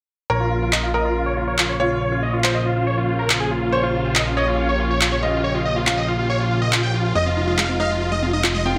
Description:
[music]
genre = uplifting trance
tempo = 140 BPM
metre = 4/4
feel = straight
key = Bb dorian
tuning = A4 = 440 Hz
[part]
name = big supersaw lead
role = melody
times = 0.3-8.8 s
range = F4 to G5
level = -25 LUFS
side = equal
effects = low-pass filter, delay
[part]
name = bright baby grand piano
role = second line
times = 0.3-8.8 s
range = Bb4 to G5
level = -28 LUFS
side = equal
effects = delay
[part]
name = supersaw pad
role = sustained chords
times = 0.3-8.8 s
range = C3 to G4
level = -29 LUFS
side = equal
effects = low-pass filter
[part]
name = fat analog bass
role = bass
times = 0.3-8.8 s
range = F1 to Bb1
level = -27 LUFS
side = equal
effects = none
[part]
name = electronic handclaps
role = drums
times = 0.7-8.5 s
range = none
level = -23 LUFS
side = equal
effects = none
[part]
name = unison pluck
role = arpeggios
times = 7.2-8.8 s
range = Ab3 to F4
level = -30 LUFS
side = equal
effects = cassette tape, delay
[sound]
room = moderate digital room reverb, RT60 1.0 s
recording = none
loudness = -20 LUFS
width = mono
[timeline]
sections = 0.3-8.8 A section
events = filter sweep on supersaw synth 0.3-8.8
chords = 0.3 Bbmadd9; 7.2 Fm7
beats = | 0.30 0.73 1.16 1.58 | 2.01 2.44 2.87 3.30 | 3.73 4.16 4.58 5.01 | 5.44 5.87 6.30 6.73 | 7.16 7.58 8.01 8.44

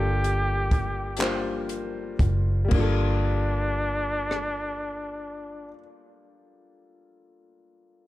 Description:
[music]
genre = slow six-eight R&B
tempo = 38-44 BPM (dotted quarters)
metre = 6/8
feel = straight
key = G minor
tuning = A4 = 440 Hz
[part]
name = clear flugelhorn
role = melody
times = 0.0-5.7 s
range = D4 to G4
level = -30 LUFS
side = equal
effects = digital delay
[part]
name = warm baby grand piano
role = accompaniment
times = 0.0-8.1 s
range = G3 to C5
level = -31 LUFS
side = left 3 dB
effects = none
[part]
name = vintage muted fingered electric bass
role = bass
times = 0.0-5.7 s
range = F#1 to G1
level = -26 LUFS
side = equal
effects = none
[part]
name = compact cocktail drum kit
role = drums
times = 0.2-4.6 s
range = crash cymbal, handclaps, hi-hat, kick drum, rim click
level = -27 LUFS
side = equal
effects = none
[sound]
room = little or no reverb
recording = none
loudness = -23 LUFS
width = side -16 dB against mid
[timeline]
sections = 0.0-2.7 A section; 2.7-5.9 B section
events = slowing down 0.0-2.7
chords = 0.0 Gm9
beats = 1.20 | 2.72 4.32

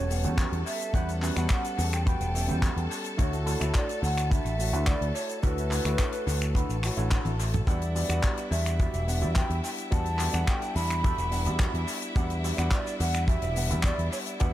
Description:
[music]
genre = nu-disco, nu disco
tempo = 107 BPM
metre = 4/4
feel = straight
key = E dorian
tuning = A4 = 440 Hz
[part]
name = mellow hollow concert flute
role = melody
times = 0.0-14.5 s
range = B4 to B5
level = -34 LUFS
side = right 1 dB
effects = analog delay
[part]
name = dark grand piano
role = accompaniment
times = 0.0-14.5 s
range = G3 to F#5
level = -36 LUFS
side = equal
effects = sidechain pumping, dub echo
[part]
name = clear studio string section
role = sustained chords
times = 0.0-14.5 s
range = E4 to A5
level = -40 LUFS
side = left 1 dB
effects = sidechain pumping
[part]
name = electric guitar with an envelope filter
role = riff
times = 0.0-14.5 s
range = C#4 to E5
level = -38 LUFS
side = right 2 dB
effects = analog chorus, dub echo
[part]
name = picked electric bass with an envelope filter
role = bass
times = 0.0-14.5 s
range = E1 to E2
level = -28 LUFS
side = equal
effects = none
[part]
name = damped 70s drum kit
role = drums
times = 0.1-14.5 s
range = finger snaps, handclaps, hi-hat, shaker, toms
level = -34 LUFS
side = left 1 dB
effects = studio reverb, dub echo
[part]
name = kick drum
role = drums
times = 0.4-14.5 s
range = none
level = -26 LUFS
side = equal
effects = studio reverb
[sound]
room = small room ambience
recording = echo-heavy mix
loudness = -25 LUFS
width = side -14 dB against mid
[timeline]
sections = 0.0-14.5 A section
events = drum fill 7.1-7.7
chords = 0.0 A13/E; 3.2 Dmaj9; 7.7 Em9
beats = 0.38 | 0.94 1.51 2.07 2.63 | 3.19 3.75 4.31 4.87 | 5.43 5.99 6.55 7.11 | 7.67 8.23 8.80 9.36 | 9.92 10.48 11.04 11.60 | 12.16 12.72 13.28 13.84 | 14.40

